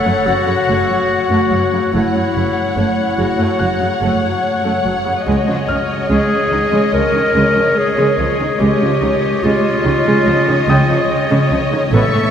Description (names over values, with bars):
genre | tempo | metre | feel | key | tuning
cinematic, suspense film score | 72 BPM | 4/4 | straight | unclear | A4 = 440 Hz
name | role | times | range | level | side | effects
muted symphonic violin section | melody | 0.0-12.3 s | D#5 to F#5 | -21 LUFS | left 2 dB | none
clear clarinet | second line | 0.0-12.3 s | E4 to A#4 | -18 LUFS | left 2 dB | none
muted symphonic violin section | second line | 0.0-12.3 s | C#5 | -22 LUFS | left 1 dB | none
impact | sound effects | 0.0-1.9 s | none | barely audible | none | none
bright concert grand piano | texture | 0.0-12.3 s | G5 to B6 | -28 LUFS | equal | none
muted studio viola section | accompaniment | 0.1-12.2 s | C#3 to B3 | -20 LUFS | right 1 dB | none
muted symphonic cello section | bass | 0.1-12.2 s | F#2 to C#3 | -20 LUFS | right 2 dB | none
muted symphonic double bass section | bass | 0.3-12.0 s | F#1 to C#2 | -24 LUFS | right 2 dB | none
muted symphonic violin section | texture | 11.9-12.3 s | C#6 | -25 LUFS | left 4 dB | none
room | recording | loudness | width
wet cathedral reverb, RT60 5.0 s | none | -13 LUFS | side -8 dB against mid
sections
0.0-12.3 A section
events
impact 0.0-1.9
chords
0.0 F#m; 5.3 C#add9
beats
0.27 1.10 | 1.93 2.77 3.60 4.43 | 5.26 6.10 6.93 7.76 | 8.60 9.43 10.27 11.10 | 11.93